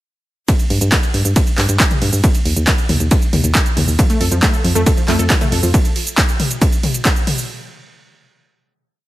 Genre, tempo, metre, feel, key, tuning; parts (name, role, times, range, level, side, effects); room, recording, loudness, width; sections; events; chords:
uplifting trance; 137 BPM; 4/4; straight; A4 = 442 Hz
electronic kick drum; drums; 0.5-7.1 s; -15 LUFS; equal; overdrive
punchy analog drum machine; drums; 0.5-7.5 s; handclaps, hi-hat, ride cymbal, shaker, toms; -18 LUFS; equal; overdrive, sidechain pumping on hats, sidechain pumping on cymbals, sidechain pumping on perc, sidechain pumping on toms
solid FM bass; bass; 0.7-5.7 s; Eb2 to G2; -16 LUFS; equal; sidechain pumping
wide unison pluck; arpeggios; 4.0-5.7 s; F3 to A4; -21 LUFS; left 1 dB; sidechain pumping, tape echo
digital ambience; -13 LUFS; side -16 dB against mid
0.5-7.5 drop
drop 0.5-7.5
0.5 N.C.; 4.0 F; 5.7 N.C.